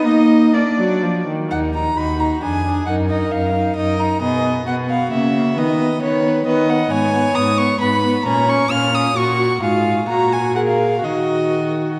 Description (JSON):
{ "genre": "quick classical-period movement for string quartet", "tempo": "132 BPM", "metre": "3/4", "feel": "rubato", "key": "Eb minor", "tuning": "A4 = 442 Hz", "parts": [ { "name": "warm violin", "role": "melody", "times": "0.0-12.0 s", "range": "B4 to F6", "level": "-23 LUFS", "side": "equal", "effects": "none" }, { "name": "warm violin", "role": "second line", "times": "0.0-12.0 s", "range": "F4 to D#5", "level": "-27 LUFS", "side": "equal", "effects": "none" }, { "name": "warm viola", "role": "accompaniment", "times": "0.0-12.0 s", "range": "Eb3 to Ab4", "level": "-22 LUFS", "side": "equal", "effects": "none" }, { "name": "warm cello", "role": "bass", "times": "0.0-12.0 s", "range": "Eb2 to Eb4", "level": "-23 LUFS", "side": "equal", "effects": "none" } ], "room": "wet concert hall reverb, RT60 2.4 s", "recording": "dark, warm production", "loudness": "-18 LUFS", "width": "mono", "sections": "0.0-1.5 A section; 1.5-12.0 B section", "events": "none", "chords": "0.1 Bb; 1.5 Ebm; 2.4 Ddim/F; 2.9 Ebm/Gb; 4.2 B; 5.1 Bbdim/Db; 5.6 B/D#; 6.9 Abm; 8.3 Bbm; 9.2 Gb/Bb; 9.6 Fm/Ab; 10.1 Gbadd9/Bb; 10.6 Bb5; 11.0 Ebm" }